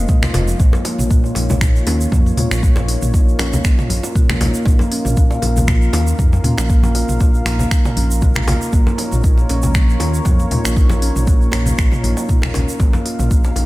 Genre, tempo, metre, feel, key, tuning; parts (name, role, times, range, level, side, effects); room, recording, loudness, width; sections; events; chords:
afro house; 118 BPM; 4/4; swing 55% on 16ths; Bb minor; A4 = 440 Hz
dark analog pad; sustained chords; 0.0-13.7 s; Bb3 to F5; -25 LUFS; left 1 dB; chorus, sidechain pumping
kalimba; arpeggios; 0.0-13.6 s; F3 to F4; -24 LUFS; right 1 dB; sidechain pumping, analog delay
dark detuned saw bass; bass; 0.0-13.7 s; F1 to Bb2; -18 LUFS; equal; sidechain pumping
deep house drum kit; drums; 0.1-13.7 s; finger snaps, hi-hat, toms; -24 LUFS; equal; studio reverb
electronic kick drum; drums; 0.1-13.4 s; -14 LUFS; equal; studio reverb
bongos; percussion; 0.1-13.7 s; -31 LUFS; right 1 dB
tube shaker; percussion; 0.1-13.5 s; -31 LUFS; right 4 dB
congas; percussion; 0.2-13.7 s; -24 LUFS; left 1 dB
light reverb, small room ambience; -13 LUFS; side -18 dB against mid
0.0-13.7 A section
0.0 Bbm